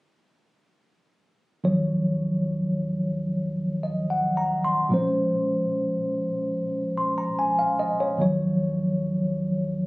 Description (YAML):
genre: jazz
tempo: 73 BPM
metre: 4/4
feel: swing 67% on 8ths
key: unclear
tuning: A4 = 440 Hz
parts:
  - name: bright tine electric piano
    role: accompaniment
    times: 1.6-9.9 s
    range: Eb2 to C6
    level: -22 LUFS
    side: equal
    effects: medium stereo tremolo
room: moderate plate reverb, RT60 2.6 s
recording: recorded on a phone in the room, studio reverb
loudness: -22 LUFS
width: side -23 dB against mid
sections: 1.6-9.9 A section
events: none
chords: 1.6 Ebm7; 4.9 Bbm9; 8.2 Ebm7